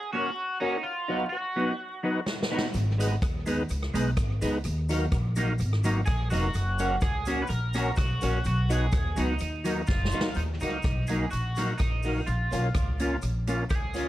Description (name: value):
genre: ska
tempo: 126 BPM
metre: 4/4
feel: straight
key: Eb minor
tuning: A4 = 441 Hz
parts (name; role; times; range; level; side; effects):
- electric guitar at the edge of break-up; melody; 0.0-2.5, 6.1-14.1 s; Eb4 to Cb5; -33 LUFS; right 1 dB; analog chorus
- clean electric guitar; accompaniment; 0.1-14.1 s; F#3 to Gb4; -32 LUFS; right 1 dB; phaser, tape echo
- percussive tonewheel organ; stabs; 0.1-14.1 s; Db4 to B4; -34 LUFS; left 2 dB; overdrive, chorus vibrato, slow rotary speaker
- swinging big-band drum kit; drums; 2.3-14.1 s; hi-hat, kick drum, rim click, snare drum; -31 LUFS; equal; none
- upright bass; bass; 2.7-14.1 s; F1 to Eb2; -28 LUFS; equal; none
- cabasa; percussion; 2.7-14.1 s; none; -48 LUFS; left 4 dB; tape echo
room: light reverb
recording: vinyl crackle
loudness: -25 LUFS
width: side -14 dB against mid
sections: 0.0-10.4 A section; 10.4-14.1 B section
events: drum fill 2.3-2.7, 9.9-10.4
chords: 0.0 Gb; 0.8 B; 2.7 Abm; 4.6 Ebm; 6.5 Gb; 8.5 B; 9.4 Ebm; 12.3 Bbm